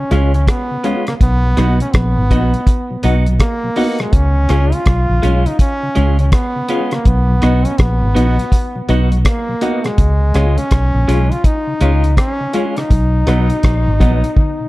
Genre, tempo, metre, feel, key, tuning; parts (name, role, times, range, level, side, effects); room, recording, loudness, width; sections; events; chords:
roots reggae; 82 BPM; 4/4; swing 62% on 16ths; Db mixolydian; A4 = 440 Hz
brilliant trombone; melody; 0.0-14.7 s; Ab3 to F4; -20 LUFS; equal; tape echo
mellow tonewheel organ; accompaniment; 0.0-14.7 s; Cb3 to Gb4; -25 LUFS; left 1 dB; chorus vibrato, stopped rotary speaker
clean electric guitar; accompaniment; 0.1-14.2 s; Gb3 to Gb4; -23 LUFS; right 3 dB; tape echo
reed electric piano; stabs; 0.1-14.2 s; F4 to Gb5; -25 LUFS; left 4 dB; fast tremolo
vintage muted fingered electric bass; bass; 0.1-14.2 s; Ab1 to Db2; -13 LUFS; equal
cloth-damped thuddy drum kit; drums; 0.1-14.6 s; hi-hat, kick drum, rim click, toms; -15 LUFS; equal
light reverb, small room ambience; dark, warm production; -12 LUFS; side -18 dB against mid
0.0-14.7 A section
drum fill 14.4-14.7
0.0 Db; 1.2 Cb; 4.1 Db; 7.1 Cb; 10.0 Db; 12.9 Cb